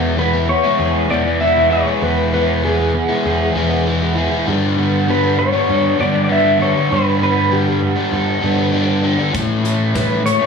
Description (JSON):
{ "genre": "indie rock", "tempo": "98 BPM", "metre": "4/4", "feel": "straight", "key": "unclear", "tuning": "A4 = 440 Hz", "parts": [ { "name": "crunchy overdriven guitar", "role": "riff", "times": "0.0-10.5 s", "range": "G2 to E4", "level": "-19 LUFS", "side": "left 7 dB", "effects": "phaser" }, { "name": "overdriven semi-hollow guitar", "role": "riff", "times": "0.0-10.5 s", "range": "E2 to A4", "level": "-22 LUFS", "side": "right 9 dB", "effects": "analog chorus, analog delay" }, { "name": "fuzz fingered electric bass", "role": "bass", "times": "0.0-10.3 s", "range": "E2 to A2", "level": "-19 LUFS", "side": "right 1 dB", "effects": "overdrive" }, { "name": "electric guitar through a small old amp", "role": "melody", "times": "0.2-10.5 s", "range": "G4 to E5", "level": "-18 LUFS", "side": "left 1 dB", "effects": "harmonic tremolo, plate reverb, analog delay" }, { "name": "loose indie drum kit", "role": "drums", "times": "9.3-10.4 s", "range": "hi-hat, kick drum, snare drum, tambourine", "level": "-24 LUFS", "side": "equal", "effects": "none" } ], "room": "moderate studio reverb, RT60 0.6 s", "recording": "studio reverb", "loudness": "-14 LUFS", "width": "side -5 dB against mid", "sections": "0.0-10.5 A section", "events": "none", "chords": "0.0 E; 4.5 Gadd9; 9.3 A" }